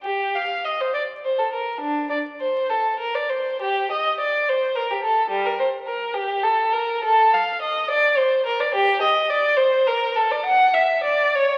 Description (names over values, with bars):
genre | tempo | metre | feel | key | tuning
classical, baroque-style suite movement for unaccompanied violin | 69 BPM (dotted quarters) | 6/8 | uneven beats, rubato | G minor | A4 = 443 Hz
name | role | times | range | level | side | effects
rich violin | solo | 0.0-11.6 s | G3 to F#5 | -21 LUFS | equal | none
room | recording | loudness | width
wet recital hall reverb, RT60 1.7 s | very old 78 rpm record, vinyl crackle | -21 LUFS | mono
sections
0.0-11.6 A section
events
none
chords
none